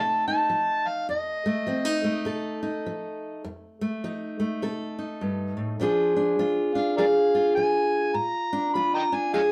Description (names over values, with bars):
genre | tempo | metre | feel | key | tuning
acoustic country blues, solo or duo | 102 BPM | 4/4 | swing 61% on 8ths | F mixolydian | A4 = 440 Hz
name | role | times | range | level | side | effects
overdriven harmonica | melody | 0.0-2.2, 6.7-9.5 s | Bb4 to B5 | -28 LUFS | equal | none
fingerpicked steel-string acoustic guitar | accompaniment | 0.0-9.5 s | F2 to A4 | -27 LUFS | equal | none
room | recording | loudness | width
moderate studio reverb, RT60 0.7 s | band playing live in one room | -26 LUFS | mono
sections
0.0-9.5 A section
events
none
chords
0.0 F7; 5.8 Bb7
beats
0.50 | 1.09 1.67 2.26 2.85 | 3.44 4.03 4.62 5.21 | 5.79 6.38 6.97 7.56 | 8.15 8.74 9.33